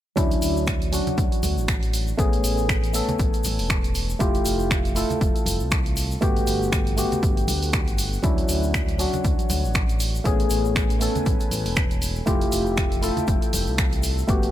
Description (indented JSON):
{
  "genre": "deep house",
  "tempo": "119 BPM",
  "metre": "4/4",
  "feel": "swing 57% on 16ths",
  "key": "D major",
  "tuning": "A4 = 440 Hz",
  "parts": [
    { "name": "percussive organ stab", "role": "stabs", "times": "0.2-14.5 s", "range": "F#3 to A4", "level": "-25 LUFS", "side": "left 1 dB", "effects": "chorus, sidechain pumping, digital delay" },
    { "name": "smooth synth bass", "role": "bass", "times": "0.2-14.5 s", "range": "E1 to D2", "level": "-27 LUFS", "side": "equal", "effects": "sidechain pumping" },
    { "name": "electronic kick drum", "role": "drums", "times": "0.2-14.4 s", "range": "none", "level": "-24 LUFS", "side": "equal", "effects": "overdrive" },
    { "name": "punchy analog drum machine", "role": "drums", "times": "0.2-14.5 s", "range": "finger snaps, hi-hat", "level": "-29 LUFS", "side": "right 2 dB", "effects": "none" },
    { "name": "tube shaker", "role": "percussion", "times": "0.2-14.5 s", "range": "none", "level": "-35 LUFS", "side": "left 4 dB", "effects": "none" },
    { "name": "airy breathy pad", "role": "texture", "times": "0.2-14.5 s", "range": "B3 to G#5", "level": "-42 LUFS", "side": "equal", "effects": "none" },
    { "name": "congas", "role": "percussion", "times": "1.1-13.6 s", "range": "none", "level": "-32 LUFS", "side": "right 2 dB", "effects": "none" }
  ],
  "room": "digital ambience",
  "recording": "none",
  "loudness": "-20 LUFS",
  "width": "side -12 dB against mid",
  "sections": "0.2-14.5 A section",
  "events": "none",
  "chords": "0.2 Dmaj9; 2.2 Amaj9; 4.2 Fmaj9; 6.2 Gmaj9; 8.2 Dmaj9; 10.3 Amaj9; 12.3 Fmaj9",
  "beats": "| 0.17 0.67 1.18 1.68 | 2.19 2.69 3.19 3.70 | 4.20 4.71 5.21 5.72 | 6.22 6.72 7.23 7.73 | 8.24 8.74 9.25 9.75 | 10.25 10.76 11.26 11.77 | 12.27 12.78 13.28 13.78 | 14.29"
}